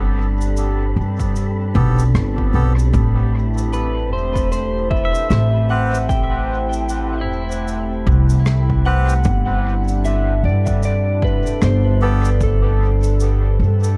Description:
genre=ambient dub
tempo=76 BPM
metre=4/4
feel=swing 60% on 16ths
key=unclear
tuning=A4 = 439 Hz
part: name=warm analog pad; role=sustained chords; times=0.0-14.0 s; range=G3 to A5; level=-29 LUFS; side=equal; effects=chorus
part: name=upright bass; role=bass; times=0.0-14.0 s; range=E1 to G2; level=-19 LUFS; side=equal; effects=none
part: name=wind-like tuned noise texture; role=texture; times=0.0-14.0 s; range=C4 to B5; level=-35 LUFS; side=equal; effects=built-in reverb
part: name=cabasa and rim click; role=drums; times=0.4-14.0 s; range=none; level=-36 LUFS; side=equal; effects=dub echo
part: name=electronic kick drum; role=drums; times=1.2-12.6 s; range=none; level=-24 LUFS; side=equal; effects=overdrive
part: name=melodica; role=stabs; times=1.8-12.3 s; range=B3 to B4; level=-32 LUFS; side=equal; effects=dub echo
part: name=electric slide guitar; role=melody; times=3.7-14.0 s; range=A4 to G5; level=-27 LUFS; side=equal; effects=vintage 12-bit sampler grit, dub echo
part: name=pedal steel guitar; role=arpeggios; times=5.0-10.0 s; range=E4 to E5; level=-34 LUFS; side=equal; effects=tape echo
room=small room ambience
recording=dark, warm production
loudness=-18 LUFS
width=mono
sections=0.0-14.0 A section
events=none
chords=0.0 Gadd9; 2.9 Am7; 9.3 Gadd9

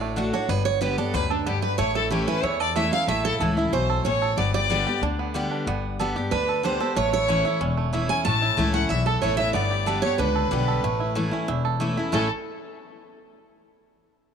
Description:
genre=bluegrass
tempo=186 BPM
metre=4/4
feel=straight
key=A mixolydian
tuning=A4 = 441 Hz
part: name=bluegrass banjo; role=melody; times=0.0-12.3 s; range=A3 to A4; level=-29 LUFS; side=right 9 dB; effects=none
part: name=picked steel-string acoustic guitar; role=melody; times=0.0-12.3 s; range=D4 to A5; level=-27 LUFS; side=right 8 dB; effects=none
part: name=picked steel-string acoustic guitar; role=accompaniment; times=0.0-12.3 s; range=E2 to G4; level=-28 LUFS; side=left 2 dB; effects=none
part: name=upright bass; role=bass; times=0.0-12.3 s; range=E1 to E2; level=-28 LUFS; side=left 3 dB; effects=none
part: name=clear fiddle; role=second line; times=1.1-12.3 s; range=D4 to A5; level=-29 LUFS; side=left 13 dB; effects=none
room=moderate plate reverb, RT60 3.1 s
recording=1960s-style stereo with parts hard left and right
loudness=-21 LUFS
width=side -7 dB against mid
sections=0.0-12.1 A section; 12.1-13.4 B section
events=none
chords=0.5 G; 1.8 A; 4.4 G; 7.0 A; 9.5 G; 10.8 A

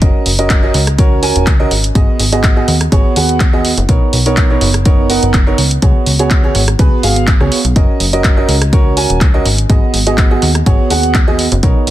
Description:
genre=piano house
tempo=124 BPM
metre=4/4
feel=swing 54% on 16ths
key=unclear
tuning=A4 = 442 Hz
part: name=clear upright piano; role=riff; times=0.0-11.9 s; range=B3 to G#5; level=-15 LUFS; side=right 3 dB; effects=sidechain pumping, dub echo
part: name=plucky analog bass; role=bass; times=0.0-11.9 s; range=D#1 to D#2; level=-15 LUFS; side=equal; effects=sidechain pumping
part: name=electronic kick drum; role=drums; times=0.0-11.7 s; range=none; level=-11 LUFS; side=equal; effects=overdrive
part: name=punchy analog drum machine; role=drums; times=0.0-11.9 s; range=handclaps, hi-hat, rim click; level=-17 LUFS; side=equal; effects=none
room=little or no reverb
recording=dense, heavily limited modern master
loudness=-9 LUFS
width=side -14 dB against mid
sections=0.0-11.9 A section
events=none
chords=0.0 F#6; 1.7 G#m7; 3.9 Bmaj9; 5.6 C#7sus4; 7.8 F#6; 9.5 G#m7

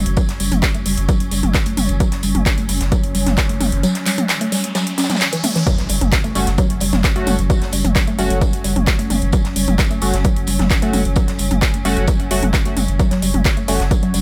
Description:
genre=driving peak-time techno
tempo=131 BPM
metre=4/4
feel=straight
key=F# phrygian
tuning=A4 = 440 Hz
part: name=saturated sub bass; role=bass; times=0.0-14.2 s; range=F#1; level=-24 LUFS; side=equal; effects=sidechain pumping, low-pass filter
part: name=swarming drone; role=drone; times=0.0-14.2 s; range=F#3 to C#4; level=-32 LUFS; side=equal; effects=built-in reverb, sidechain pumping
part: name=techno drum kit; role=drums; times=0.1-14.2 s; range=handclaps, hi-hat, toms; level=-24 LUFS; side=equal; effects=none
part: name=woody wave-folded pluck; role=riff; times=0.2-14.2 s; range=E3 to C#4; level=-24 LUFS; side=equal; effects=subtle chorus, sidechain pumping, digital delay
part: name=electronic kick drum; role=drums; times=0.2-14.0 s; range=none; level=-20 LUFS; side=equal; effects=none
part: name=tight funk drum kit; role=drums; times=0.2-14.2 s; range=hi-hat, snare drum, tambourine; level=-33 LUFS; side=equal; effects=sidechain pumping on hats, high-pass filter on hats, high-pass filter on snare, sidechain pumping on perc, high-pass filter on perc, high-pass filter on room
part: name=riser and impact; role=sound effects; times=3.3-7.5 s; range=none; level=-33 LUFS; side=equal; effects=none
part: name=sync-sweep polysynth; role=stabs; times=6.4-13.8 s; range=A3 to F#4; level=-27 LUFS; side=equal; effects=chorus, sidechain pumping, tape echo
room=small room ambience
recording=none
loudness=-17 LUFS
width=mono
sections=0.0-5.7 A section; 5.7-14.2 B section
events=riser 3.3-5.7; drop 5.7-14.2; impact 5.7-7.5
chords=0.0 F#5; 5.7 F#m

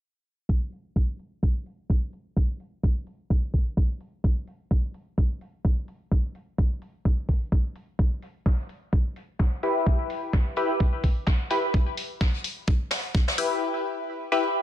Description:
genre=bass house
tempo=128 BPM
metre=4/4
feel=swing 58% on 16ths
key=E minor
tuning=A4 = 440 Hz
part: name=electronic kick drum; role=drums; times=0.5-13.3 s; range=none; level=-22 LUFS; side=equal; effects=studio reverb
part: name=electronic hi-hat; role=drums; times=0.7-13.5 s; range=none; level=-36 LUFS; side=left 1 dB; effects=studio reverb
part: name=jazz brush drum kit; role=drums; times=8.0-13.5 s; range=hi-hat, snare drum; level=-33 LUFS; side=left 1 dB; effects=sidechain pumping on hats, high-pass filter on hats, studio reverb, high-pass filter on snare, high-pass filter on room
part: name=band-passed chord stab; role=stabs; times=9.6-14.4 s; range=E4 to B4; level=-25 LUFS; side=left 2 dB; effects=phaser, sidechain pumping, ping-pong delay
room=light reverb, small room ambience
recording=dense, heavily limited modern master, low-pass filter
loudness=-24 LUFS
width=side -12 dB against mid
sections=0.5-14.6 A section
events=filter sweep 0.5-14.6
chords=0.5 Em

